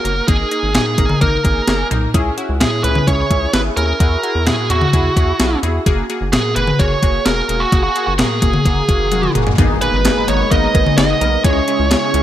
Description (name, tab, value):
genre	synth-pop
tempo	129 BPM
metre	4/4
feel	straight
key	G# minor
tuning	A4 = 440 Hz
part	bluesy overdriven lead guitar	melody	0.0-12.2 s	F#4 to D#5	-18 LUFS	right 3 dB	distortion, digital delay
part	funky polysynth comp	accompaniment	0.0-12.2 s	G#3 to B4	-21 LUFS	left 2 dB	chorus
part	rubbery square bass	bass	0.0-12.2 s	E1 to E2	-20 LUFS	equal	none
part	clean 12-bit digital drum machine	drums	0.1-12.2 s	cowbell, hi-hat, kick drum, snare drum, toms	-16 LUFS	equal	overdrive, gated reverb
part	riser and impact	sound effects	8.7-11.4 s	none	-27 LUFS	equal	none
part	ensemble organ-string	sustained chords	9.6-12.2 s	C#3 to A#5	-22 LUFS	equal	ensemble chorus
room	light reverb, digital ambience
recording	bright 1980s-style digital production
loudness	-13 LUFS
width	side -12 dB against mid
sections	0.0-9.6 A section; 9.6-12.2 B section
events	drum fill 9.1-9.6; impact 9.6-11.4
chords	0.3 G#sus2; 2.1 C#m; 4.0 Eadd9; 5.9 F#add9; 9.6 G#madd9; 11.4 C#m